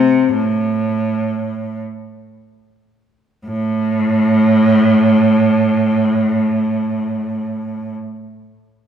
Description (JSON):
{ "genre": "classical, baroque-style suite movement for unaccompanied cello", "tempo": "36-41 BPM", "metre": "3/4", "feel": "rubato", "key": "A minor", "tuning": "A4 = 440 Hz", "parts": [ { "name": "clear cello", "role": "solo", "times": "0.0-7.9 s", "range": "A2 to C3", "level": "-14 LUFS", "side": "right 1 dB", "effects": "none" } ], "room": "wet recital hall reverb, RT60 1.7 s", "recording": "heard from further back in the room", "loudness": "-13 LUFS", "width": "side -9 dB against mid", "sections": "0.0-3.4 A section; 3.4-8.2 B section", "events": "slowing down 0.0-3.4", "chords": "none" }